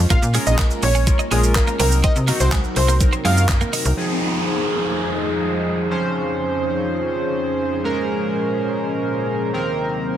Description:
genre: dance-pop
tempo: 124 BPM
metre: 4/4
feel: straight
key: Bb minor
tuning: A4 = 440 Hz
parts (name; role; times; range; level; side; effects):
- chorused polysynth; accompaniment; 0.0-10.2 s; Eb3 to C5; -23 LUFS; equal; sidechain pumping
- airy breathy pad; sustained chords; 0.1-10.2 s; F2 to C5; -26 LUFS; right 1 dB; chorus, sidechain pumping
- slap-like FM bass; bass; 0.0-3.9 s; Bb1 to C3; -18 LUFS; equal; sidechain pumping
- fat analog lead; melody; 0.1-3.4 s; Ab4 to F5; -23 LUFS; equal; phaser, digital delay
- twelve-string electric guitar; riff; 0.1-3.8 s; Ab3 to Eb4; -27 LUFS; right 4 dB; lush chorus
- pop drum kit; drums; 0.1-4.0 s; handclaps, hi-hat, kick drum, shaker; -20 LUFS; equal; overdrive
- group handclap; percussion; 0.3-3.6 s; none; barely audible; none; none
- downlifter; sound effects; 4.0-7.8 s; none; -26 LUFS; equal; none
room: light reverb, digital ambience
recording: dense, heavily limited modern master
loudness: -17 LUFS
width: side -10 dB against mid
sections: 0.0-4.0 A section; 4.0-10.2 B section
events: drop 0.0-4.0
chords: 0.1 Bbm7; 1.8 Cm7b5; 4.0 Fm7; 5.9 Dbmaj7/F; 7.8 Bbm7; 9.5 Cm7b5

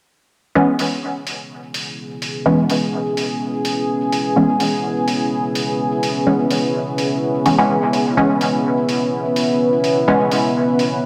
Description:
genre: dub techno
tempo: 126 BPM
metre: 4/4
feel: straight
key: C# minor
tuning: A4 = 440 Hz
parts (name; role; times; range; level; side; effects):
- deep dark ambient pad; sustained chords; 1.6-11.1 s; B3 to B4; -21 LUFS; equal; chorus, built-in reverb
- filtered dub chord stab; stabs; 0.6-10.3 s; E3 to C#4; -20 LUFS; equal; chorus, phaser, dub echo
- electronic hi-hat; drums; 0.8-10.9 s; none; -30 LUFS; equal; none
room: wet plate reverb, RT60 1.6 s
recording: dreamy mix soaked in reverb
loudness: -18 LUFS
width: mono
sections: 0.6-11.1 A section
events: none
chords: 0.6 C#m7

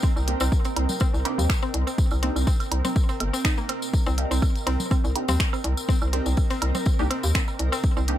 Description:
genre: minimal techno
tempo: 123 BPM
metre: 4/4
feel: swing 54% on 16ths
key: C minor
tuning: A4 = 437 Hz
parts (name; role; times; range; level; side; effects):
- mallet-like synth pluck; riff; 0.0-8.0 s; Bb3 to Eb4; -31 LUFS; equal; chorus, sidechain pumping, dub echo
- electronic kick drum; drums; 0.0-7.9 s; none; -22 LUFS; equal; overdrive
- tambourine; percussion; 0.0-8.1 s; none; -36 LUFS; left 5 dB; none
- granular cloud pad; texture; 0.0-8.2 s; C4 to G5; -32 LUFS; right 1 dB; built-in reverb, sidechain pumping
- hollow knocking FM bass; bass; 0.2-8.2 s; G1 to Eb2; -24 LUFS; equal; sidechain pumping
- woodblock and congas; percussion; 0.2-8.1 s; none; -35 LUFS; right 4 dB; dub echo
- filtered dub chord stab; stabs; 0.3-8.2 s; Bb3 to G4; -34 LUFS; right 1 dB; phaser, ensemble chorus, dub echo
- minimal click drum kit; drums; 0.3-8.2 s; finger snaps, hi-hat; -29 LUFS; equal; overdrive
room: light reverb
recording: none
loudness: -21 LUFS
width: side -12 dB against mid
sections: 0.0-8.2 A section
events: none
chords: 0.0 Cm7

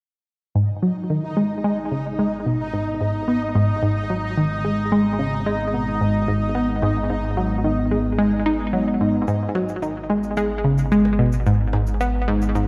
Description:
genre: ambient, sequencer-driven space music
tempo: 110 BPM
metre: 4/4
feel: straight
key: G# minor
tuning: A4 = 440 Hz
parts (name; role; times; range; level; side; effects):
- phased analog pad; sustained chords; 0.5-12.7 s; G#3 to D#4; -31 LUFS; equal; phaser, chorus
- bubbling stepped-filter texture; texture; 0.7-9.3 s; D#4 to D#5; -30 LUFS; equal; chorus, built-in reverb
- analog pluck; riff; 0.6-12.7 s; G#2 to D#4; -23 LUFS; equal; chorus, phaser, delay
- analog drone; bass; 2.1-12.7 s; G#1; -30 LUFS; equal; chorus
- shaker and percussion blips; percussion; 9.3-12.7 s; none; -46 LUFS; equal; overdrive, delay
room: wet concert hall reverb, RT60 2.3 s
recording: dark, warm production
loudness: -21 LUFS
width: mono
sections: 0.6-9.3 A section; 9.3-12.7 B section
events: fade-in on synth drone 0.6-9.3; filter sweep on synth arpeggio sound 0.6-9.3; filter sweep on analog synth pad 0.6-9.3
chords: 0.6 G#m

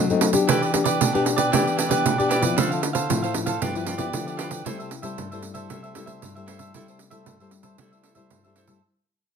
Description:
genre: samba and choro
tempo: 115 BPM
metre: 4/4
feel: straight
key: C major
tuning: A4 = 441 Hz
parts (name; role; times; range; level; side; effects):
- nylon-string guitar; accompaniment; 0.0-8.8 s; G2 to G4; -25 LUFS; left 5 dB; none
- pandeiro; percussion; 0.1-8.8 s; none; -24 LUFS; right 6 dB; none
- cavaquinho; accompaniment; 0.5-8.8 s; D4 to F5; -26 LUFS; right 4 dB; none
room: moderate large studio reverb, RT60 0.8 s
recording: none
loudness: -20 LUFS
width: side -6 dB against mid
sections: 0.0-8.8 A section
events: fade-out 0.0-8.8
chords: 0.5 Em7; 2.6 Dm9; 3.6 G6; 4.7 C6

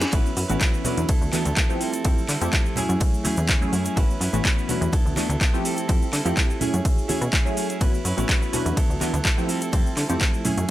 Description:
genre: filtered disco house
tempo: 125 BPM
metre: 4/4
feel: swing 53% on 16ths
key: unclear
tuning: A4 = 440 Hz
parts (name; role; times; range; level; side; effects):
- direct-recorded clean electric guitar; riff; 0.0-10.7 s; F#3 to B4; -30 LUFS; right 3 dB; sidechain pumping
- plucky analog bass; bass; 0.0-10.6 s; A1 to D3; -26 LUFS; equal; tube saturation, sidechain pumping
- house drum kit; drums; 0.0-10.7 s; cabasa, handclaps, hi-hat, ride cymbal, snare drum; -27 LUFS; equal; overdrive, sidechain pumping on hats, sidechain pumping on perc, sidechain pumping on cymbals
- tube shaker and congas; percussion; 0.0-10.7 s; none; -34 LUFS; right 2 dB; sidechain pumping on perc
- funky polysynth comp; accompaniment; 0.1-10.7 s; E3 to G#4; -27 LUFS; equal; chorus, phaser, cassette tape, sidechain pumping
- electronic kick drum; drums; 0.1-10.3 s; none; -22 LUFS; equal; none
room: digital ambience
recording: none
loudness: -20 LUFS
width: side -14 dB against mid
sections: 0.0-10.7 A section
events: none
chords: 0.1 A69; 1.1 D69; 1.8 Fmaj9; 2.8 F#m9; 4.0 A69; 4.9 D69; 5.6 Fmaj9; 6.6 F#m9; 7.8 A69; 8.8 D69; 9.5 Fmaj9

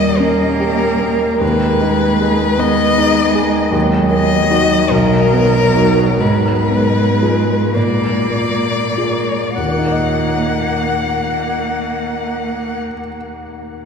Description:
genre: classical, slow romantic movement for piano quartet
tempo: 30-53 BPM (dotted quarters)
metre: 6/8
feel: rubato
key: Eb minor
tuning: A4 = 440 Hz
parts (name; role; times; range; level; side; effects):
- rich violin; melody; 0.0-12.8 s; Bb4 to Gb5; -18 LUFS; left 3 dB; none
- rich cello; second line; 0.0-12.8 s; Gb3 to Bb3; -19 LUFS; right 4 dB; none
- warm concert grand piano; accompaniment; 0.0-13.9 s; B1 to Eb5; -17 LUFS; left 1 dB; none
room: wet cathedral reverb, RT60 7.2 s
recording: heard from further back in the room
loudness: -13 LUFS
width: side -6 dB against mid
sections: 0.0-9.6 A section; 9.6-13.0 B section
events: slowing down 2.6-9.6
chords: 0.0 Eb7; 1.4 Abm/Eb; 3.7 Ebm; 4.9 B; 6.2 Fdim/Ab; 7.8 Bb7; 9.6 Ebm

